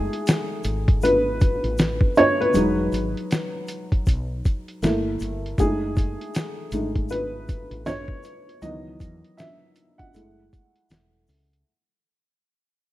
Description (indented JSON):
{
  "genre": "lo-fi hip hop",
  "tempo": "79 BPM",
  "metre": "4/4",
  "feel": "swing 61% on 16ths",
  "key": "F# dorian",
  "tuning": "A4 = 440 Hz",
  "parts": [
    { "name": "dark upright piano", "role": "accompaniment", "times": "0.0-11.7 s", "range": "D#3 to F#5", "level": "-23 LUFS", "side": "equal", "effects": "cassette tape, low-pass filter" },
    { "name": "woody fretless electric bass", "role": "bass", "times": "0.0-11.6 s", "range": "E1 to E2", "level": "-30 LUFS", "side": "equal", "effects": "none" },
    { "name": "lo-fi sampler-style drum kit", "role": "drums", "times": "0.1-11.7 s", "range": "hi-hat, kick drum, snare drum", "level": "-22 LUFS", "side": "equal", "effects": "none" },
    { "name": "egg shaker", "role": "percussion", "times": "0.3-11.5 s", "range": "none", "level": "-47 LUFS", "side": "left 6 dB", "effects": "none" }
  ],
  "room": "light reverb",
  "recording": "rough home demo mix, cassette tape",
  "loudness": "-20 LUFS",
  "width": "side -15 dB against mid",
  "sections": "0.0-11.7 A section",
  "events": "fade-out 0.0-11.7; upright piano solo 0.0-11.7",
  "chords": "0.0 F#m69 (rootless); 2.5 Emaj9; 4.8 Gm69; 5.6 F#m69; 8.6 C#m11; 10.1 F#m9",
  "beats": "0.26 1.02 1.78 | 2.54 3.30 4.06 4.82 | 5.58 6.34 7.10 7.86 | 8.62 9.38 10.14 10.90"
}